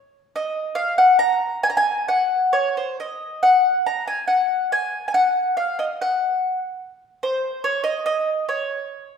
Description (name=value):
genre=fado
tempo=68-74 BPM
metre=2/4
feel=rubato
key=unclear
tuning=A4 = 440 Hz
part: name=mandolin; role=solo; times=0.4-9.2 s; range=C5 to Bb5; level=-18 LUFS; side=left 1 dB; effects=none
room=wet recital hall reverb, RT60 1.3 s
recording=recorded in a church or concert hall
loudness=-18 LUFS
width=side -7 dB against mid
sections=0.0-9.2 A section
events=none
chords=none